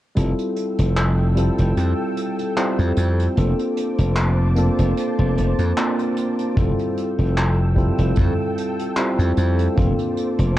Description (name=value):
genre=vaporwave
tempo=75 BPM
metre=4/4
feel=swing 54% on 16ths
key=F major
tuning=A4 = 440 Hz
part: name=tine electric piano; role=accompaniment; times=0.2-10.6 s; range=G3 to C5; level=-22 LUFS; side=equal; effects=wide subtle chorus, vintage 12-bit sampler grit, tape echo
part: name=soft string machine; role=sustained chords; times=0.4-10.6 s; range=A4 to E6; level=-31 LUFS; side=equal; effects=ensemble chorus
part: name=glassy slap bass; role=bass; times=0.2-10.6 s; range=F1 to F2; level=-18 LUFS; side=equal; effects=none
part: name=unplugged drum kit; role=drums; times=0.2-10.5 s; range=handclaps, hi-hat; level=-28 LUFS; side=equal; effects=vintage 12-bit sampler grit
part: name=kick drum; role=drums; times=6.6-9.9 s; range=none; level=-22 LUFS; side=equal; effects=vintage 12-bit sampler grit
room=light reverb, studio reverb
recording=dark, warm production, cassette tape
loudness=-18 LUFS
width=side -14 dB against mid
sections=0.2-10.6 A section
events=none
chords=0.2 Fmaj9; 3.4 Bbmaj9/F; 6.6 Fmaj9; 9.8 Bbmaj9/F